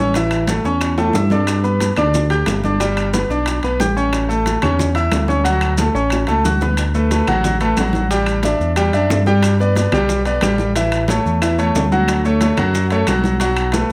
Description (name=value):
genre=latin, salsa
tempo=181 BPM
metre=4/4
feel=straight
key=D major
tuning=A4 = 445 Hz
part: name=bright concert grand piano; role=accompaniment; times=0.0-13.9 s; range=E3 to G6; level=-20 LUFS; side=equal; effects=none
part: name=smooth gliding synth bass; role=bass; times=0.0-13.9 s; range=G1 to G2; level=-22 LUFS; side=equal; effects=none
part: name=congas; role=percussion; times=0.1-13.9 s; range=none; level=-26 LUFS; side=equal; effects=none
part: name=timbales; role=percussion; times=0.1-13.9 s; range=none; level=-29 LUFS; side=equal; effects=none
part: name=bongos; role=percussion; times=0.2-13.9 s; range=none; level=-30 LUFS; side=equal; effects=none
part: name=maracas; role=percussion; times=0.2-13.9 s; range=none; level=-35 LUFS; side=equal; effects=none
part: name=claves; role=percussion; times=0.3-13.7 s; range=none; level=-33 LUFS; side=equal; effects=none
room=moderate studio reverb, RT60 0.5 s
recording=none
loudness=-17 LUFS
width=mono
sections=0.0-6.8 A section; 6.8-13.9 B section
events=drum fill 1.0-1.5, 6.1-6.8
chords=0.1 A; 1.5 G; 2.8 A9sus4; 4.1 A; 5.5 Dmaj7; 6.8 D6; 8.1 A7sus4; 9.4 A9sus4; 10.8 A; 12.1 Dmaj7; 13.4 B5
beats=| 0.15 0.48 0.81 1.15 | 1.48 1.81 2.14 2.47 | 2.80 3.13 3.47 3.80 | 4.13 4.46 4.79 5.12 | 5.45 5.79 6.12 6.45 | 6.78 7.11 7.44 7.77 | 8.11 8.44 8.77 9.10 | 9.43 9.76 10.09 10.42 | 10.76 11.09 11.42 11.75 | 12.08 12.41 12.74 13.07 | 13.40 13.73